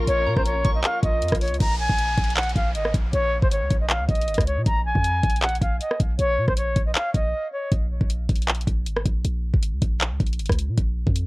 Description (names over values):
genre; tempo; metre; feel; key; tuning
hip hop, trap; 157 BPM; 4/4; half-time; Bb minor; A4 = 440 Hz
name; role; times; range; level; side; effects
soft synth bell; second line; 0.0-0.8 s; Bb5 to Db6; -34 LUFS; equal; chorus, phaser, tape echo
dark baby grand piano; accompaniment; 0.0-1.6 s; F3 to F4; -36 LUFS; left 3 dB; low-pass filter
dark symphonic string section; sustained chords; 0.0-1.6 s; Db4 to Bb4; -33 LUFS; left 2 dB; none
warm 808-style bass; bass; 0.0-11.3 s; Ab1 to Bb2; -24 LUFS; equal; none
bright reedy concert flute; melody; 0.1-7.7 s; C5 to Bb5; -25 LUFS; equal; low-pass filter, tape echo
trap drum kit; drums; 0.1-11.3 s; handclaps, hi-hat, kick drum, rim click; -23 LUFS; equal; none
downlifter; sound effects; 1.6-4.7 s; none; -36 LUFS; equal; none
room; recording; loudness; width
little or no reverb; worn, warbling old tape, cassette tape, warbly pitch drift; -20 LUFS; side -21 dB against mid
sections
0.0-1.6 A section; 1.6-11.3 B section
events
break 7.3-7.7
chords
0.0 Bbm; 4.7 Bb5; 7.7 N.C.